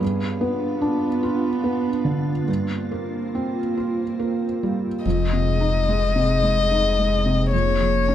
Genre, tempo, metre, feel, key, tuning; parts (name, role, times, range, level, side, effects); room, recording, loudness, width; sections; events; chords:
neoclassical piano and strings; 72 BPM; 3/4; rubato; F minor; A4 = 440 Hz
dark cello; second line; 0.0-8.1 s; Ab3 to B3; -28 LUFS; right 5 dB
felt-muted upright piano; accompaniment; 0.0-8.1 s; F2 to F4; -24 LUFS; right 1 dB
soft additive organ-like pad; sustained chords; 0.0-8.1 s; Bb3 to Ab4; -30 LUFS; left 1 dB; ensemble chorus, built-in reverb
warm violin; melody; 5.1-8.1 s; Db5 to Eb5; -22 LUFS; left 6 dB
sub bass with octave; bass; 5.1-8.1 s; F1; -23 LUFS; left 1 dB
light reverb; close, detailed microphones; -20 LUFS; side -11 dB against mid
0.0-5.0 A section; 5.0-8.1 A section
0.0 G7; 2.5 C7sus4/G; 5.0 Fm7; 7.5 Db6/F